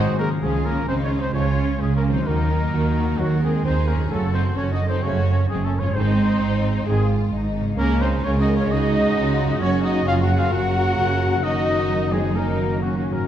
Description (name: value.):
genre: cinematic.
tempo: 131 BPM.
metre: 4/4.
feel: straight.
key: Db major.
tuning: A4 = 439 Hz.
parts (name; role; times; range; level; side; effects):
warm symphonic violin section; melody; 0.0-13.3 s; Bb3 to Bb4; -33 LUFS; left 3 dB; none.
bright small flute group; second line; 0.0-13.3 s; Gb4 to Gb5; -31 LUFS; left 3 dB; none.
warm symphonic violin section; second line; 0.0-13.3 s; Ab3 to Bb4; -33 LUFS; left 4 dB; none.
warm symphonic viola section; accompaniment; 0.0-13.3 s; Gb3 to Ab4; -28 LUFS; equal; none.
mellow French horn section; sustained chords; 0.0-13.3 s; Ab3 to Ab4; -31 LUFS; left 4 dB; none.
warm trombone section; sustained chords; 0.0-13.3 s; Ab2 to Ab3; -30 LUFS; right 2 dB; none.
concert harp; arpeggios; 0.0-13.3 s; Gb2 to Eb6; -31 LUFS; left 4 dB; none.
clear trumpet; stabs; 0.0-13.3 s; Gb4 to Gb5; -28 LUFS; equal; none.
dark symphonic double bass section; bass; 0.0-13.2 s; Gb1 to Eb2; -23 LUFS; right 2 dB; none.
warm symphonic cello section; bass; 0.0-13.2 s; Gb2 to Eb3; -25 LUFS; right 2 dB; none.
room: wet scoring stage reverb, RT60 1.5 s.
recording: dark, warm production.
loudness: -18 LUFS.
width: side -10 dB against mid.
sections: 0.4-13.3 A section.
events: none.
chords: 0.4 Db; 2.3 Ebm; 4.1 Gbm; 5.9 Ab; 7.8 Db; 9.6 Gb; 11.4 Ebm/Gb.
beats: | 0.42 0.88 1.34 1.81 | 2.27 2.73 3.19 3.65 | 4.11 4.57 5.03 5.49 | 5.95 6.41 6.86 7.32 | 7.78 8.24 8.69 9.15 | 9.61 10.07 10.52 10.98 | 11.44 11.90 12.36 12.82.